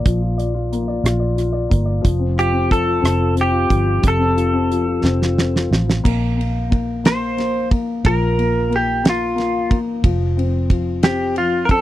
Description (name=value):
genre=six-eight pop ballad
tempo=60 BPM (dotted quarters)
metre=6/8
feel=straight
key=Bb major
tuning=A4 = 443 Hz
part: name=dark upright piano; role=accompaniment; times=0.0-11.8 s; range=C3 to D5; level=-21 LUFS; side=left 4 dB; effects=none
part: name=vintage muted fingered electric bass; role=bass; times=0.0-11.8 s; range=F1 to Bb1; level=-21 LUFS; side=right 1 dB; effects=none
part: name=damped 70s drum kit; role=drums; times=0.1-11.8 s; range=crash cymbal, hi-hat, kick drum, ride cymbal, rim click, snare drum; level=-17 LUFS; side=right 1 dB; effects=none
part: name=direct-recorded clean electric guitar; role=melody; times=2.4-11.8 s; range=F4 to C5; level=-20 LUFS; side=equal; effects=lush chorus
room=little or no reverb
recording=dry, close 1970s-style studio recording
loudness=-16 LUFS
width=side -14 dB against mid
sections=0.0-6.0 A section; 6.0-11.8 B section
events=drum fill 5.0-6.0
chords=0.0 Bb; 2.0 F; 6.0 Bb5; 10.0 F5